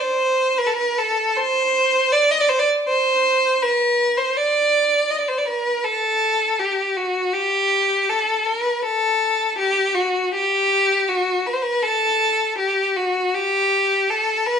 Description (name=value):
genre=turkish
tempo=80 BPM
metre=4/4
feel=straight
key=unclear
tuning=A4 = 440 Hz
part: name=rich violin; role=solo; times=0.0-14.6 s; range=F#4 to Eb5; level=-17 LUFS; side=equal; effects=none
room=wet large studio reverb, RT60 1.0 s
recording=band playing live in one room, nothing above 10.9 kHz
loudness=-17 LUFS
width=side -7 dB against mid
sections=0.0-5.8 A section; 5.8-14.6 B section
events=none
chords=none